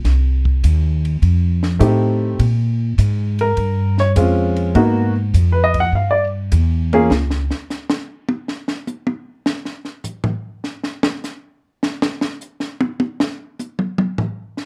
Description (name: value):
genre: jazz piano trio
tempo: 102 BPM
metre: 4/4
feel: swing 69% on 8ths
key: unclear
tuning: A4 = 437 Hz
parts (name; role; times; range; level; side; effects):
- upright bass; bass; 0.0-7.5 s; C2 to Bb2; -18 LUFS; equal; none
- compact cocktail drum kit; drums; 0.0-14.7 s; hi-hat, kick drum, ride cymbal, snare drum, toms; -24 LUFS; equal; none
- warm baby grand piano; melody; 1.8-7.1 s; Ab3 to Gb5; -19 LUFS; equal; none
room: little or no reverb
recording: none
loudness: -18 LUFS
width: mono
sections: 0.0-14.7 A section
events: grand piano solo 0.0-14.7; drum solo 7.1-14.7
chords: 0.0 Cm; 1.2 F7; 2.4 Bbm7; 4.8 Abm7; 5.9 Em; 7.1 N.C.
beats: | 0.04 0.63 1.22 1.81 | 2.40 2.99 3.58 4.16 | 4.75 5.34 5.93 6.52 | 7.11 7.70 8.29 8.88 | 9.46 10.05 10.64 11.23 | 11.82 12.41 13.00 13.59 | 14.18